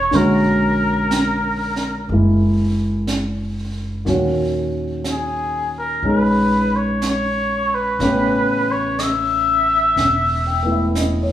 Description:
jazz; 61 BPM; 4/4; swing 68% on 8ths; A4 = 440 Hz
trumpet with cup mute; melody; 0.0-11.0 s; G#4 to E5; -19 LUFS; left 1 dB
warm grand piano; accompaniment; 0.0-11.3 s; A#2 to G5; -20 LUFS; equal
upright bass; bass; 0.0-11.3 s; E1 to D#2; -24 LUFS; equal
jazz brush drum kit; drums; 0.1-11.3 s; brushed snare drum, hi-hat, snare drum; -27 LUFS; right 3 dB
wet recital hall reverb, RT60 1.3 s; recorded in a church or concert hall; -16 LUFS; side -11 dB against mid
0.0-11.3 A section
0.1 A#7alt; 4.1 D#m7; 8.0 A9

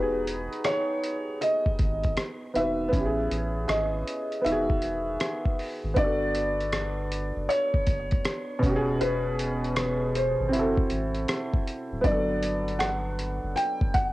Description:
lo-fi hip hop; 79 BPM; 4/4; swing 66% on 16ths; E major; A4 = 444 Hz
felt-muted upright piano; melody; 0.0-14.1 s; B4 to G5; -29 LUFS; equal
felt-muted upright piano; accompaniment; 0.0-14.1 s; B2 to B4; -29 LUFS; right 1 dB; cassette tape
soft dub sub bass; bass; 0.0-14.1 s; D1 to A1; -33 LUFS; equal; transformer saturation
lo-fi sampler-style drum kit; drums; 0.3-14.1 s; hi-hat, kick drum, rim click; -28 LUFS; equal; vintage 12-bit sampler grit, cassette tape
moderate spring reverb, RT60 2.1 s; home recording on cassette; -24 LUFS; side -17 dB against mid
0.0-6.0 A section; 6.0-14.1 B section
0.0 Emaj7; 2.9 Amaj9; 4.5 Emaj9; 6.0 Gmaj7; 8.6 E6; 10.5 D7/F# (rootless); 12.0 Gmaj7

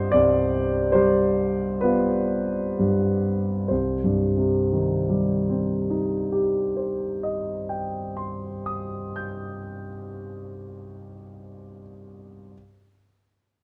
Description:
classical, romantic nocturne for solo piano; 30-39 BPM; 4/4; rubato; C minor; A4 = 440 Hz
warm grand piano; solo; 0.0-12.5 s; C2 to G6; -25 LUFS; equal
moderate stone room reverb, RT60 1.3 s; dark, warm production; -24 LUFS; mono
0.0-3.7 A section; 3.7-10.3 B section
slowing down 0.0-3.7
0.0 G7/C; 3.7 Cm

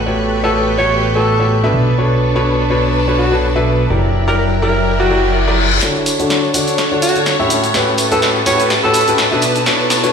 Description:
piano house; 125 BPM; 4/4; swing 56% on 16ths; D major; A4 = 440 Hz
string machine, violins; sustained chords; 0.0-10.1 s; D4 to G6; -22 LUFS; equal; ensemble chorus
fat analog bass; bass; 0.0-5.8 s; F#1 to B1; -17 LUFS; right 1 dB
clear studio string section; texture; 0.0-10.1 s; B3 to A5; -22 LUFS; equal
bright grand piano; riff; 0.1-10.1 s; A2 to E5; -16 LUFS; left 1 dB; low-pass filter, ping-pong delay
clear alto saxophone; melody; 0.4-9.2 s; F#4 to C#5; -19 LUFS; equal; ping-pong delay
reverse cymbal and riser; sound effects; 5.1-10.1 s; -23 LUFS; left 3 dB
punchy analog drum machine; drums; 5.8-10.1 s; hi-hat, shaker, snare drum; -18 LUFS; right 1 dB; high-pass filter on snare, low-pass filter on snare, high-pass filter on hats, low-pass filter on hats, high-pass filter on perc, low-pass filter on perc
tambourine; percussion; 5.8-10.1 s; -25 LUFS; left 4 dB
moderate plate reverb, RT60 1.5 s; played on a big sound system in a bare room, stone room reverb, high-pass filter; -12 LUFS; side -6 dB against mid
0.0-5.8 A section; 5.8-10.1 B section
reverse cymbal 5.1-5.8; build-up 5.8-10.1; drum fill 5.8-10.1; filter sweep on grand piano 5.8-10.1
0.0 A13; 1.7 Bm9; 3.9 F#7b9b13; 5.8 Dmaj7; 7.5 A13; 9.4 Bm9

